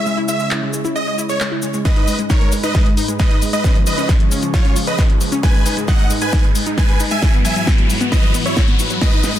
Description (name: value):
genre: uplifting trance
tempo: 134 BPM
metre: 4/4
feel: straight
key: G# minor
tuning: A4 = 440 Hz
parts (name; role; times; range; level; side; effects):
- big supersaw lead; melody; 0.0-9.3 s; E4 to G#5; -23 LUFS; right 2 dB; sidechain pumping, digital delay
- supersaw stab; second line; 0.0-9.3 s; C#5 to G#5; -29 LUFS; right 2 dB; sidechain pumping, digital delay
- lush unison pad; sustained chords; 0.0-9.4 s; G#2 to C#5; -25 LUFS; equal; chorus, sidechain pumping
- wide unison pluck; arpeggios; 0.1-9.4 s; E#3 to E4; -23 LUFS; left 2 dB; cassette tape, sidechain pumping, digital delay
- tube shaker; percussion; 0.1-9.4 s; none; -28 LUFS; left 3 dB; none
- big-room dance drum kit; drums; 0.5-9.4 s; handclaps, hi-hat, snare drum; -24 LUFS; equal; soft clipping on snare, sidechain pumping on hats
- electronic kick drum; drums; 1.9-9.1 s; none; -15 LUFS; equal; none
- riser; sound effects; 3.8-9.4 s; none; -27 LUFS; left 1 dB; none
room: digital ambience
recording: dense, heavily limited modern master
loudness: -14 LUFS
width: side -12 dB against mid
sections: 0.0-1.9 A section; 1.9-9.4 B section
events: filter sweep on analog synth pad 0.0-1.9; filter sweep on supersaw synth 0.0-1.9; build-up 1.9-9.4; drum fill 1.9-9.4; riser 3.8-9.4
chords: 0.0 C#m; 1.9 G#m; 3.6 C#; 5.4 G#m; 7.2 Eadd9/G#